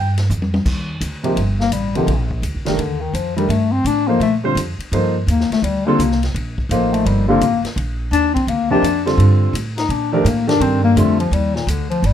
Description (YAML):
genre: modal jazz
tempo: 169 BPM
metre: 4/4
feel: swing 65% on 8ths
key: Eb lydian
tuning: A4 = 440 Hz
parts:
  - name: dark concert grand piano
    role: accompaniment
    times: 0.0-11.2 s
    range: C3 to C5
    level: -19 LUFS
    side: right 2 dB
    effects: none
  - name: upright bass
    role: bass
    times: 0.0-12.1 s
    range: G1 to Bb2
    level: -19 LUFS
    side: right 1 dB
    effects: none
  - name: vintage drum kit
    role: drums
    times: 0.2-12.1 s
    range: crash cymbal, hi-hat, kick drum, ride cymbal, snare drum, toms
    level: -28 LUFS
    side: left 2 dB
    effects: none
  - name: breathy bass clarinet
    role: second line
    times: 1.6-12.1 s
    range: Bb2 to Eb4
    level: -18 LUFS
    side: left 5 dB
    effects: none
room: light reverb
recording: none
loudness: -15 LUFS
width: side -10 dB against mid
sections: 0.7-12.1 A section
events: drum fill 0.3-0.7; bass clarinet solo 0.7-12.1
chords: 0.0 Ebadd9 (rootless); 0.7 Ebmaj9